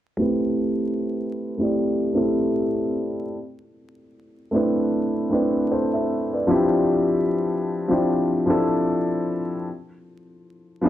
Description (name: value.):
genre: hip hop.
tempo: 76 BPM.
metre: 4/4.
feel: swing 57% on 16ths.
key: unclear.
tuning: A4 = 440 Hz.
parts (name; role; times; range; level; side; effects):
dark upright piano; accompaniment; 0.2-10.9 s; F3 to E5; -20 LUFS; equal; cassette tape, low-pass filter.
room: wet small room reverb, RT60 0.6 s.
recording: vinyl crackle.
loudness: -20 LUFS.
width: side -12 dB against mid.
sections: 0.2-10.9 A section.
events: filter sweep on upright piano 0.2-10.9.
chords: 0.2 Am9; 3.3 Cmaj13; 6.5 Dm11; 9.7 E7(no3) (rootless).